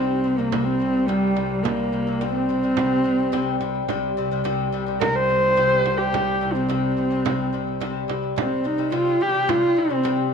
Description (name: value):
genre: mongolian traditional, Mongolian folk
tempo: 107 BPM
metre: 4/4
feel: straight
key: unclear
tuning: A4 = 440 Hz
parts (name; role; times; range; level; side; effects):
- dark horsehead fiddle; melody; 0.0-10.3 s; G3 to C5; -21 LUFS; right 1 dB; none
- lute; arpeggios; 0.0-10.3 s; C3 to G3; -26 LUFS; left 5 dB; tape echo
- muted cello; drone; 0.0-8.4 s; C2; -30 LUFS; right 2 dB; none
- frame drum; percussion; 0.2-10.2 s; none; -30 LUFS; right 10 dB; none
room: wet echo chamber reverb, RT60 1.6 s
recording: 1960s-style stereo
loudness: -19 LUFS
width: side -6 dB against mid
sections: 0.0-8.4 A section; 8.4-10.3 B section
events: none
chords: 0.0 C5